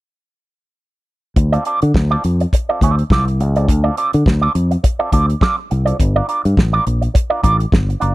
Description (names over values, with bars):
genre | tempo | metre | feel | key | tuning
disco | 104 BPM | 4/4 | swing 56% on 16ths | D minor | A4 = 442 Hz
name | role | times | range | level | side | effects
electric guitar with an envelope filter | accompaniment | 1.4-8.1 s | C4 to D5 | -18 LUFS | right 3 dB | wah
fingered electric bass | bass | 1.4-8.1 s | F#1 to D3 | -15 LUFS | equal | none
damped 70s drum kit | drums | 1.4-8.1 s | hi-hat, kick drum, snare drum | -15 LUFS | equal | none
room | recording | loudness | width
small room ambience | dry, close 1970s-style studio recording | -13 LUFS | side -18 dB against mid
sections
1.4-8.1 A section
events
none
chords
1.4 Dm7; 6.0 Gm7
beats
| 1.36 1.94 2.52 3.10 | 3.68 4.26 4.83 5.41 | 5.99 6.57 7.15 7.73